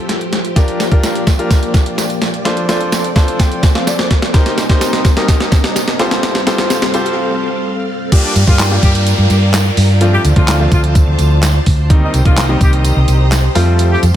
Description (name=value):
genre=dance-pop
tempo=127 BPM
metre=4/4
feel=straight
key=G minor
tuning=A4 = 439 Hz
part: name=bright concert grand piano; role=accompaniment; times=0.0-14.0 s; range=Eb3 to A5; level=-19 LUFS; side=left 1 dB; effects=sidechain pumping
part: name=string machine, full ensemble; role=sustained chords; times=0.0-14.2 s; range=F3 to Bb5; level=-21 LUFS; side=equal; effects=ensemble chorus, sidechain pumping
part: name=crisp 8-bit digital drum machine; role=drums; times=0.1-14.1 s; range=crash cymbal, handclaps, hi-hat, kick drum, snare drum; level=-13 LUFS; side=equal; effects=none
part: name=tambourine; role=percussion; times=0.6-14.1 s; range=none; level=-30 LUFS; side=right 7 dB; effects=none
part: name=riser and downlifter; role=sound effects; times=3.6-11.9 s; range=none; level=-25 LUFS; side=equal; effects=none
part: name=clear horn section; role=melody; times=8.2-14.0 s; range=F3 to Eb5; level=-23 LUFS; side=left 2 dB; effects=dub echo
part: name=hollow-body short-scale fingered electric bass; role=bass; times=8.4-14.1 s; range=C2 to G2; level=-12 LUFS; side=equal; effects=sidechain pumping
room=little or no reverb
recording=none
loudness=-10 LUFS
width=side -11 dB against mid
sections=0.0-8.1 A section; 8.1-14.2 B section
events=build-up 0.0-8.1; drum fill 0.0-7.2; grand piano fill 2.9-4.3; break 7.2-8.1; drop 8.1-14.2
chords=0.0 Fadd9; 0.6 Gm7; 2.5 Dm7; 4.3 Cm7; 6.0 Fadd9; 8.1 Gm7; 10.0 Dm7; 11.9 Cm7; 13.6 Fadd9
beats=0.09 | 0.56 1.03 1.51 1.98 | 2.45 2.92 3.40 3.87 | 4.34 4.81 5.29 5.76 | 6.23 6.70 7.18 7.65 | 8.12 8.59 9.07 9.54 | 10.01 10.48 10.96 11.43 | 11.90 12.37 12.85 13.32 | 13.79